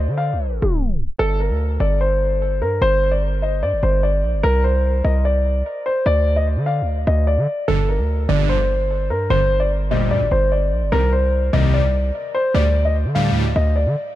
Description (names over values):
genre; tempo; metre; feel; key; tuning
hip hop, trap; 148 BPM; 4/4; half-time; G minor; A4 = 440 Hz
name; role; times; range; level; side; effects
hard-hitting 808-style bass; bass; 0.0-14.0 s; G1 to D3; -19 LUFS; equal; none
dark concert grand piano; melody; 0.2-14.1 s; A4 to F5; -20 LUFS; left 1 dB; low-pass filter, ping-pong delay
big bright polysynth; stabs; 7.7-13.4 s; Bb1 to G3; -22 LUFS; right 1 dB; chorus
room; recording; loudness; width
little or no reverb; tape stop; -16 LUFS; side -14 dB against mid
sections
0.0-1.2 A section; 1.2-14.2 B section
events
tape stop 0.4-1.2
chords
0.0 N.C.; 1.2 G5; 4.4 Csus2; 6.1 N.C.; 7.7 Gm; 10.9 Cm; 12.5 D5